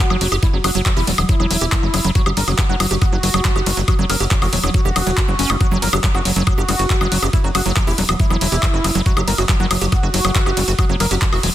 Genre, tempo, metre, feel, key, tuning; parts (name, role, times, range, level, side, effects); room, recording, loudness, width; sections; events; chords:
psychedelic trance; 139 BPM; 4/4; straight; A4 = 439 Hz
wide unison lead; melody; 0.0-11.5 s; F#3 to A#4; -24 LUFS; equal; phaser, sidechain pumping, digital delay
liquid acid bass; riff; 0.0-11.5 s; F#3 to G4; -23 LUFS; right 1 dB; chorus, auto-pan, sidechain pumping, digital delay
tight sequencer bass; bass; 0.1-11.5 s; E1 to G1; -20 LUFS; equal
drum and bass drum kit; drums; 0.1-11.5 s; handclaps, hi-hat, ride cymbal, woodblock; -21 LUFS; left 1 dB; overdrive
electronic kick drum; drums; 0.4-11.3 s; -17 LUFS; equal; overdrive
digital ambience; dense, heavily limited modern master, faint mains hum; -14 LUFS; side -13 dB against mid
0.0-11.5 A section
0.0 F#5